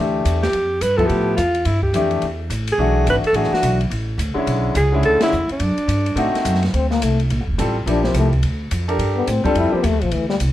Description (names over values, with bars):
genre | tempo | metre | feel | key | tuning
modal jazz | 212 BPM | 4/4 | swing 62% on 8ths | G dorian from 6.7 s | A4 = 440 Hz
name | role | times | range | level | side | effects
clear grand piano | accompaniment | 0.0-9.8 s | D3 to Bb4 | -21 LUFS | left 1 dB | none
upright bass | bass | 0.0-10.5 s | F1 to A2 | -20 LUFS | equal | none
open jazz drum kit | drums | 0.3-10.5 s | hi-hat, kick drum, ride cymbal, snare drum | -28 LUFS | left 1 dB | none
mellow alto saxophone | melody | 0.4-6.4 s | D4 to B4 | -19 LUFS | right 1 dB | none
breathy trombone | second line | 6.7-10.4 s | E3 to E4 | -21 LUFS | left 5 dB | none
room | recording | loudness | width
light reverb | none | -16 LUFS | side -13 dB against mid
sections
0.0-6.7 A section; 6.7-10.5 B section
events
band accent 5.2; trombone solo 6.7-10.5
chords
0.0 Dsus4; 2.2 E9sus4; 5.6 D7b9; 6.7 Gm11